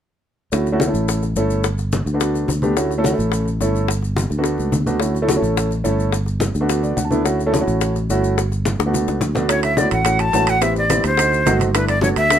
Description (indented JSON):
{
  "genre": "Afro-Cuban jazz",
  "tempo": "214 BPM",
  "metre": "4/4",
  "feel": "straight",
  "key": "D major",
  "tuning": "A4 = 442 Hz",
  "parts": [
    { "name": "warm grand piano", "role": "accompaniment", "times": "0.5-12.4 s", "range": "A3 to A5", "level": "-20 LUFS", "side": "right 1 dB", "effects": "none" },
    { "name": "fingered electric bass", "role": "bass", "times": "0.5-12.4 s", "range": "G1 to D2", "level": "-21 LUFS", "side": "equal", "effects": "none" },
    { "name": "bongos", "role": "percussion", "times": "0.5-12.4 s", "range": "none", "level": "-26 LUFS", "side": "left 10 dB", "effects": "none" },
    { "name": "congas", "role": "percussion", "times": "0.5-12.4 s", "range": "none", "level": "-25 LUFS", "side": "equal", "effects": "none" },
    { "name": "maracas", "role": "percussion", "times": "0.5-12.4 s", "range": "none", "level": "-32 LUFS", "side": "left 6 dB", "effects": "none" },
    { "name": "breathy bright jazz flute", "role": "melody", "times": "9.5-12.4 s", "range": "B4 to A5", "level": "-18 LUFS", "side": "equal", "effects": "none" },
    { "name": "timbales", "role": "percussion", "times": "9.5-12.4 s", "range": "none", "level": "-24 LUFS", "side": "right 8 dB", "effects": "none" }
  ],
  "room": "light reverb",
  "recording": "minimal, uncompressed stereo recording",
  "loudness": "-16 LUFS",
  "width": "side -9 dB against mid",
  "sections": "0.5-9.5 A section; 9.5-12.4 B section",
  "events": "grand piano fill 6.7-7.3; drum fill 8.8-9.5",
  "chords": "0.5 Dmaj9; 1.6 Gmaj7; 2.8 Dmaj9; 3.9 Gmaj7; 5.0 Dmaj9; 6.1 Gmaj7; 7.3 Dmaj9; 8.4 Gmaj7; 9.5 Dmaj7; 10.6 Am7; 11.2 D7b9; 11.7 G69"
}